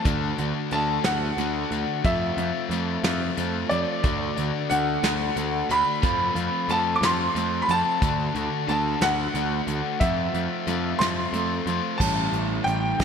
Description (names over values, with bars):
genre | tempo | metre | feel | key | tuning
indie rock | 60 BPM (dotted quarters) | 6/8 | straight | unclear | A4 = 441 Hz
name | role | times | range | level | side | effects
bright upright piano | melody | 0.0-13.0 s | D5 to D6 | -26 LUFS | equal | ping-pong delay
mellow electric guitar | riff | 0.0-13.0 s | A2 to G4 | -32 LUFS | right 10 dB | ensemble chorus, ping-pong delay
overdriven electric guitar | riff | 0.0-13.0 s | A2 to F#4 | -29 LUFS | left 9 dB | none
growling picked electric bass | bass | 0.1-13.0 s | A1 to F2 | -29 LUFS | equal | overdrive
soft brush drum kit | drums | 0.1-13.0 s | crash cymbal, hi-hat, kick drum, snare drum | -28 LUFS | right 1 dB | gated reverb
room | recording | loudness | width
moderate lush hall reverb, RT60 2.7 s | bright 1980s-style digital production | -22 LUFS | side -7 dB against mid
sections
0.0-12.0 A section; 12.0-13.0 B section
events
none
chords
0.1 D; 2.0 Fmaj7; 4.0 D; 6.0 F; 8.0 D; 10.0 Fmaj7; 12.0 A7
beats
| 0.06 1.05 | 2.05 3.04 | 4.04 5.04 | 6.03 7.02 | 8.02 9.01 | 10.01 11.01 | 12.00 13.00